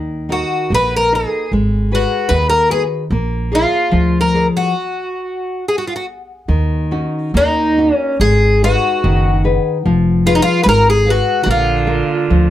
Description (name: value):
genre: fado-style ballad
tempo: 69-76 BPM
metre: 2/4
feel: rubato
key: Eb minor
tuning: A4 = 439 Hz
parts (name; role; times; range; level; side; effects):
- nylon-string guitar; accompaniment; 0.0-12.5 s; Eb3 to F5; -18 LUFS; left 3 dB; none
- upright bass; bass; 0.0-12.5 s; F1 to Eb2; -17 LUFS; right 1 dB; none
- picked twelve-string acoustic guitar; melody; 0.3-12.5 s; Eb4 to Cb5; -15 LUFS; equal; none
- clear cello; second line; 11.4-12.5 s; D3 to Eb3; -20 LUFS; right 4 dB; none
room: light reverb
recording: faint mains hum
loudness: -13 LUFS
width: side -12 dB against mid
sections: 0.0-6.5 A section; 6.5-12.5 A section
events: stop 4.8-6.5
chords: 0.0 Ebm; 1.5 Abm7; 3.1 Bb7; 4.8 N.C.; 6.5 Ebm7; 8.2 Abm; 9.8 Fdim; 11.5 Bb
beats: 0.71 | 1.52 2.31 | 3.11 3.92 | 4.76 5.61 | 6.47 7.34 | 8.20 9.03 | 9.85 10.66 | 11.47 12.31